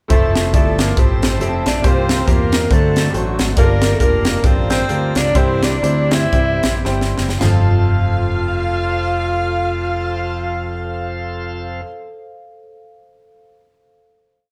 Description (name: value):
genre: uptempo gospel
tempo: 104-139 BPM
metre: 4/4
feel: swing 58% on 8ths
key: F major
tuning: A4 = 440 Hz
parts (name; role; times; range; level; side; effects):
- warm saxophone section; melody; 0.1-11.8 s; A3 to F5; -27 LUFS; equal; none
- warm tenor saxophone; melody; 0.1-11.8 s; F#3 to F4; -24 LUFS; equal; none
- bright baby grand piano; accompaniment; 0.1-11.9 s; F2 to G5; -26 LUFS; equal; none
- bright tonewheel organ; sustained chords; 0.1-11.8 s; D3 to A4; -34 LUFS; equal; none
- glass harmonica; sustained chords; 0.1-11.8 s; A4 to C6; -35 LUFS; equal; none
- fingered electric bass; bass; 0.1-11.8 s; F1 to E2; -23 LUFS; equal; none
- crisp fusion drum kit; drums; 0.1-7.6 s; hi-hat, kick drum, snare drum, splash cymbal, toms; -19 LUFS; equal; none
room: moderate stone room reverb, RT60 1.1 s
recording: band playing live in one room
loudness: -17 LUFS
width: mono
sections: 0.1-7.4 breakdown; 7.4-12.0 final chord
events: slowing down 3.6-7.4; grand piano fill 6.6-7.4; drum fill 6.9-7.4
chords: 0.1 Fmaj7; 1.8 C7sus4; 2.7 D7; 3.6 Gm7; 5.4 C; 7.4 F